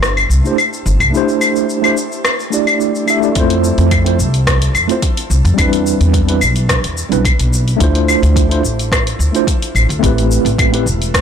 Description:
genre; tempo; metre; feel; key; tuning
sunset chillout; 108 BPM; 4/4; straight; unclear; A4 = 441 Hz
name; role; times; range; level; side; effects
upright bass; bass; 0.0-11.2 s; E1 to F2; -14 LUFS; equal; none
deep house drum kit; drums; 0.0-11.2 s; claves, hi-hat, rim click, shaker; -17 LUFS; left 3 dB; soft clipping on snare
mellow tine electric piano; accompaniment; 0.4-10.9 s; G3 to E5; -16 LUFS; moving between left 2 dB and right 7 dB; medium stereo tremolo, auto-pan, tape echo, shimmer reverb
electronic kick drum; drums; 3.4-11.2 s; none; -17 LUFS; equal; none
room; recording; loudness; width
light reverb; blown-out, overdriven recording, overdrive; -11 LUFS; side -8 dB against mid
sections
0.0-3.4 A section; 3.4-11.2 B section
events
none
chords
0.0 C69; 3.4 Fmaj7; 5.6 Cmaj9; 7.8 Dm9; 10.0 Am9

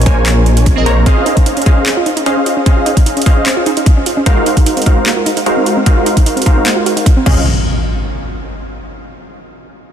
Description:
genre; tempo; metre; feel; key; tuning
future bass; 150 BPM; 4/4; half-time; Db major; A4 = 440 Hz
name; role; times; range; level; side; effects
glassy digital keys; accompaniment; 0.0-1.1 s; C4 to Eb5; -24 LUFS; right 3 dB; none
supersaw stab; riff; 0.0-7.4 s; Ab3 to Bb5; -15 LUFS; equal; sidechain pumping, low-pass filter, dub echo
wide detuned saw bass; bass; 0.0-1.0, 7.3-7.4 s; Bb1 to Db2; -12 LUFS; equal; chorus, sidechain pumping
trap drum kit; drums; 0.0-7.3 s; crash cymbal, handclaps, hi-hat; -19 LUFS; right 1 dB; studio reverb
electronic kick drum; drums; 0.1-7.3 s; none; -10 LUFS; equal; studio reverb
soft round pluck; arpeggios; 1.1-7.4 s; Bb3 to Gb4; -20 LUFS; right 3 dB; chorus, sidechain pumping, dub echo
impact; sound effects; 7.3-8.9 s; none; -18 LUFS; equal; none
room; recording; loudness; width
light reverb, digital ambience; dense, heavily limited modern master; -9 LUFS; side -9 dB against mid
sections
0.0-7.5 A section; 7.5-9.1 B section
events
filter sweep on supersaw synth 0.0-7.5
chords
0.0 Bbm9; 1.1 Dbmaj9; 4.3 Ab13; 7.3 Dbmaj9; 7.5 N.C.

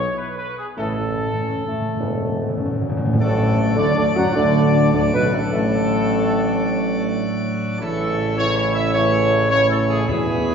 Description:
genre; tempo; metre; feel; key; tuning
classical, ceremonial fanfare; 104 BPM; 4/4; straight; unclear; A4 = 440 Hz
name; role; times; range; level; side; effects
dark trumpet section; melody; 0.0-10.5 s; G#4 to F#5; -23 LUFS; equal; none
warm tuba; bass; 0.0-10.5 s; E1 to F#2; -22 LUFS; right 2 dB; none
dark French horn section; sustained chords; 0.8-10.5 s; A3 to F#4; -25 LUFS; left 2 dB; none
warm trombone section; sustained chords; 0.8-10.5 s; A2 to F#3; -26 LUFS; right 1 dB; none
timpani; percussion; 0.8-3.2, 10.1-10.5 s; E2 to A2; -24 LUFS; equal; none
pipe organ, plenum; sustained chords; 3.2-10.5 s; A2 to D5; -25 LUFS; equal; none
room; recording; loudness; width
wet church reverb, RT60 2.5 s; recorded in a church or concert hall, nothing above 7.7 kHz; -17 LUFS; side -6 dB against mid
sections
0.0-3.2 A section; 3.2-10.5 B section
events
timpani fill 0.8-3.2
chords
0.0 N.C.; 0.8 A; 3.2 D/A; 7.8 A

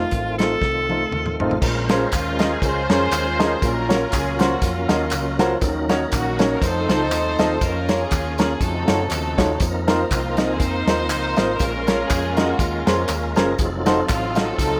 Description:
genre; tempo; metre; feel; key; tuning
uptempo gospel; 120 BPM; 4/4; swing 56% on 8ths; Bb minor; A4 = 440 Hz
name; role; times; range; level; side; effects
edgy alto saxophone; melody; 0.0-1.4 s; F4 to A4; -26 LUFS; equal; none
tonewheel organ; sustained chords; 0.0-14.8 s; Db3 to C5; -29 LUFS; equal; slow rotary speaker, overdrive, chorus vibrato
hollow-body short-scale fingered electric bass; bass; 0.0-14.8 s; F1 to Gb2; -30 LUFS; equal; none
warm soul drum kit; drums; 0.1-14.7 s; crash cymbal, hi-hat, kick drum, snare drum, toms; -25 LUFS; equal; none
warm grand piano; accompaniment; 0.4-14.5 s; Bb2 to Eb5; -26 LUFS; equal; none
tambourine and handclaps; percussion; 1.6-14.7 s; none; -35 LUFS; equal; none
warm studio string section; melody; 2.1-14.8 s; Ab3 to C5; -27 LUFS; equal; none
room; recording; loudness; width
moderate concert hall reverb, RT60 1.9 s; none; -20 LUFS; mono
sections
0.0-1.6 A section; 1.6-14.8 B section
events
drum fill 0.6-1.6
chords
0.0 F7; 1.6 Bbm9; 3.6 Gbmaj7/Bb; 5.6 Ebm7; 6.6 F7; 7.6 Bbm/F; 8.6 F7b9b13; 9.6 F7sus4; 11.6 Bbm7; 13.6 F7b9

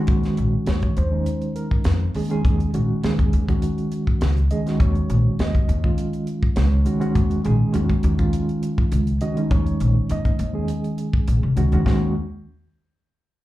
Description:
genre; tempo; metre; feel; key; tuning
electric jazz fusion; 102 BPM; 4/4; straight; Eb minor; A4 = 442 Hz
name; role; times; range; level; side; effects
mellow reed electric piano; accompaniment; 0.0-12.1 s; Eb3 to Eb5; -23 LUFS; right 1 dB; fast tremolo, slapback echo
upright bass; bass; 0.1-12.1 s; Bb1 to F2; -20 LUFS; equal; none
tight funk drum kit; drums; 0.1-12.0 s; hi-hat, kick drum, snare drum; -23 LUFS; equal; none
room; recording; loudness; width
light reverb; live gig heard through the venue's PA, club reverb; -18 LUFS; side -16 dB against mid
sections
0.0-11.9 A section; 11.9-13.4 B section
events
reed electric piano fill 6.3-7.2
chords
0.0 Ebm9; 11.9 Ebm7

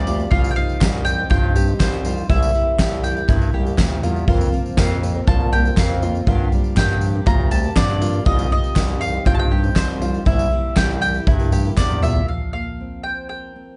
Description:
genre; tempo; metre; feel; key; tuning
indie folk with a building arrangement; 120 BPM; 4/4; straight; unclear; A4 = 441 Hz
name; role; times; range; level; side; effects
mandolin; melody; 0.0-13.8 s; C5 to Bb5; -27 LUFS; equal; none
fingerpicked steel-string acoustic guitar; accompaniment; 0.0-13.8 s; G2 to Eb5; -31 LUFS; equal; none
picked twelve-string acoustic guitar; accompaniment; 0.0-12.3 s; F2 to Bb4; -33 LUFS; equal; none
open-back banjo; arpeggios; 0.0-12.3 s; E4 to G4; -32 LUFS; equal; none
growling FM bass; bass; 0.0-12.2 s; C2 to G2; -25 LUFS; equal; none
tambourine; percussion; 0.1-12.1 s; none; -41 LUFS; equal; none
soft-mallet drum kit; drums; 0.3-12.3 s; kick drum, snare drum, toms; -21 LUFS; equal; none
group handclap; percussion; 0.8-11.9 s; none; -38 LUFS; equal; none
room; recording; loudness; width
light reverb; nothing above 10.4 kHz; -19 LUFS; mono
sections
0.0-12.3 A section; 12.3-13.8 B section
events
drum fill 11.8-12.3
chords
0.3 Cm; 2.3 C7; 4.3 Fsus4; 6.3 Gm; 8.3 Cm; 10.3 C7; 12.3 Fsus4

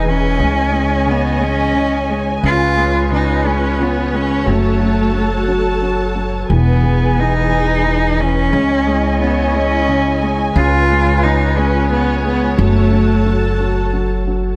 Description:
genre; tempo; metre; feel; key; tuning
six-eight pop ballad; 59 BPM (dotted quarters); 6/8; straight; unclear; A4 = 440 Hz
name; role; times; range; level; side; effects
rich cello; melody; 0.0-13.6 s; A3 to E#4; -20 LUFS; equal; diffuse ambient delay
felt-muted upright piano; accompaniment; 0.0-14.6 s; C#3 to G#3; -23 LUFS; equal; none
warm studio string section; sustained chords; 0.0-14.6 s; E3 to A5; -22 LUFS; equal; none
upright bass; bass; 0.0-14.6 s; E1 to C#2; -20 LUFS; equal; none
room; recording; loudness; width
moderate plate reverb, RT60 2.3 s; dreamy mix soaked in reverb; -15 LUFS; mono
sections
0.0-14.6 A section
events
none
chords
0.4 C#madd9; 2.4 C#7; 4.5 F#m; 6.5 E; 8.5 C#madd9; 10.6 C#7; 12.6 F#m

